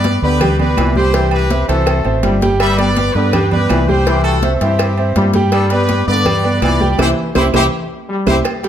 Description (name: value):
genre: latin, salsa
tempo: 164 BPM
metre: 4/4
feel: straight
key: unclear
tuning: A4 = 440 Hz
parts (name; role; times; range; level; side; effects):
- clear horn section; melody; 0.0-8.4 s; D4 to E5; -19 LUFS; left 2 dB; none
- bright concert grand piano; accompaniment; 0.0-8.7 s; G3 to G5; -18 LUFS; right 2 dB; none
- deep dub fingered electric bass; bass; 0.0-8.4 s; G1 to G2; -17 LUFS; equal; none
- congas; percussion; 0.0-8.7 s; none; -22 LUFS; equal; none
- cowbell; percussion; 0.0-8.7 s; none; -24 LUFS; left 2 dB; none
- timbales and agogo bells; percussion; 0.0-8.7 s; none; -25 LUFS; right 7 dB; none
- clear trombone section; second line; 0.2-8.3 s; D3 to G3; -21 LUFS; left 2 dB; none
- claves; percussion; 0.4-8.6 s; none; -32 LUFS; right 4 dB; none
room: moderate large studio reverb, RT60 1.4 s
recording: none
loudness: -12 LUFS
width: side -10 dB against mid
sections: 0.0-8.5 A section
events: band accent 7.0-8.5; drum fill 7.5-8.5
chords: 0.0 G; 1.1 C; 2.6 G; 4.1 C; 5.5 G; 7.0 C